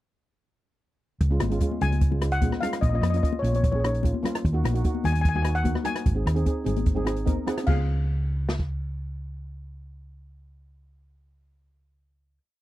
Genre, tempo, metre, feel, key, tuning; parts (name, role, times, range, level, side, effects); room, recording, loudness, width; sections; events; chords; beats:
calypso; 148 BPM; 4/4; straight; Db major; A4 = 439 Hz
hollow-body short-scale fingered electric bass; bass; 1.2-12.4 s; Ab1 to F2; -26 LUFS; equal
open jazz drum kit; drums; 1.2-8.7 s; crash cymbal, hi-hat, kick drum, rim click, snare drum; -26 LUFS; equal
steel pan; accompaniment; 1.3-12.4 s; Ab3 to Gb5; -30 LUFS; right 2 dB
congas; percussion; 1.4-7.9 s; -34 LUFS; left 13 dB
steel pan; melody; 1.8-12.4 s; Db5 to Ab5; -30 LUFS; left 3 dB
little or no reverb; dry, close 1970s-style studio recording; -22 LUFS; side -15 dB against mid
1.2-7.7 verse; 7.7-10.9 final chord
steel pan fill 7.1-7.7
1.2 Db; 2.8 Bbm; 4.4 Ebm; 6.1 Ab; 7.7 Db
| 1.21 1.61 2.01 2.42 | 2.82 3.22 3.63 4.03 | 4.43 4.84 5.24 5.65 | 6.05 6.46 6.86 7.27 | 7.67 8.08 8.48 8.89 | 9.30 9.70 10.11 10.51